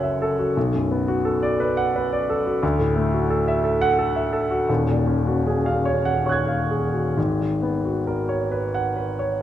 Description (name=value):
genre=classical, impressionist solo piano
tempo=43-59 BPM (dotted quarters)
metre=6/8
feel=rubato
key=D major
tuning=A4 = 440 Hz
part: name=clear grand piano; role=solo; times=0.0-9.4 s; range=D#1 to G#6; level=-20 LUFS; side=equal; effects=none
room=wet recital hall reverb, RT60 1.8 s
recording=dark, warm production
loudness=-20 LUFS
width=side -11 dB against mid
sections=0.0-9.4 A section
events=none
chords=0.0 F#m7; 0.6 Bm7; 2.6 Dadd9; 4.7 D#m11; 7.2 G#m11